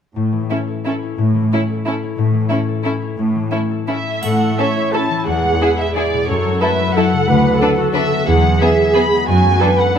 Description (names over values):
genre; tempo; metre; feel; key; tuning
classical, orchestral ballroom waltz; 164-196 BPM; 3/4; rubato; A major; A4 = 438 Hz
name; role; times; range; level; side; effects
concert harp; arpeggios; 0.2-10.0 s; E2 to B4; -20 LUFS; left 8 dB; none
muted chamber cello section; bass; 0.2-9.6 s; D2 to A2; -20 LUFS; right 3 dB; none
muted chamber violin section; melody; 0.5-10.0 s; A4 to B5; -20 LUFS; equal; none
muted chamber violin section; second line; 0.5-10.0 s; B3 to B4; -22 LUFS; left 1 dB; none
muted chamber viola section; accompaniment; 0.5-10.0 s; C#4 to C#5; -19 LUFS; right 3 dB; none
triangle; percussion; 4.2-4.9 s; none; -39 LUFS; left 1 dB; none
room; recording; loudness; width
moderate recital hall reverb, RT60 1.8 s; close, detailed microphones; -14 LUFS; side -8 dB against mid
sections
0.2-4.2 A section; 4.2-10.0 B section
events
none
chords
0.2 A; 5.3 E; 6.3 F#m7; 7.3 Bm/D; 8.3 E; 9.3 D/F#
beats
| 0.16 0.50 0.86 | 1.19 1.52 1.86 | 2.19 2.51 2.85 | 3.18 3.52 3.88 | 4.24 4.58 4.93 | 5.27 5.61 5.96 | 6.28 6.61 6.96 | 7.28 7.61 7.95 | 8.28 8.61 8.96 | 9.29 9.62 9.98